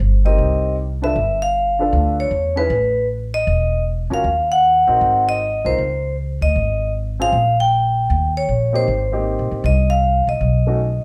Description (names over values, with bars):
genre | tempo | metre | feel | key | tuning
jazz, small-group swing and bop | 156 BPM | 4/4 | swing 64% on 8ths | Ab major | A4 = 440 Hz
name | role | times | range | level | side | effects
upright bass | bass | 0.0-11.0 s | E1 to Fb2 | -22 LUFS | equal | none
vibraphone with medium hard mallets | melody | 0.3-11.0 s | B4 to G5 | -20 LUFS | equal | none
warm upright piano | accompaniment | 0.3-10.8 s | A3 to Cb5 | -27 LUFS | equal | none
room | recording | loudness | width
moderate large studio reverb, RT60 0.8 s | band playing live in one room | -18 LUFS | mono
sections
0.0-11.0 A section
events
none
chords
0.0 Abmaj9 (rootless); 1.2 G9; 2.7 Aadd9; 4.2 Ebm; 5.0 Ab9; 5.8 Dbmaj7(no3); 7.3 Gm7/Bb; 8.1 Eb6; 8.9 Abmaj9; 10.4 B9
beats
0.00 0.39 0.77 | 1.16 1.54 1.93 2.31 | 2.70 3.08 3.47 3.85 | 4.24 4.63 5.01 5.40 | 5.78 6.17 6.55 6.94 | 7.33 7.71 8.10 8.48 | 8.87 9.26 9.64 10.03 | 10.41 10.80